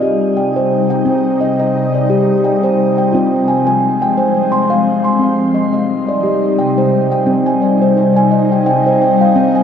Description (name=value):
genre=world meditative, meditative tuned percussion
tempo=87 BPM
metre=3/4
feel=swing 56% on 16ths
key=C minor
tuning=A4 = 440 Hz
part: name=ethereal airy pad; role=sustained chords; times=0.0-9.6 s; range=C3 to Eb4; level=-16 LUFS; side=left 5 dB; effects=ensemble chorus, built-in reverb, phaser, shimmer reverb
part: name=steel tongue drum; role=arpeggios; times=0.0-9.6 s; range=C4 to C6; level=-13 LUFS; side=right 2 dB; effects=diffuse ambient delay, shimmer reverb
room=wet plate reverb, RT60 3.3 s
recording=dreamy mix soaked in reverb, faint mains hum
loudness=-11 LUFS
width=side -8 dB against mid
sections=0.0-7.3 A section; 7.3-9.6 B section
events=none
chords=0.0 Cm; 3.1 Fm; 5.2 Cm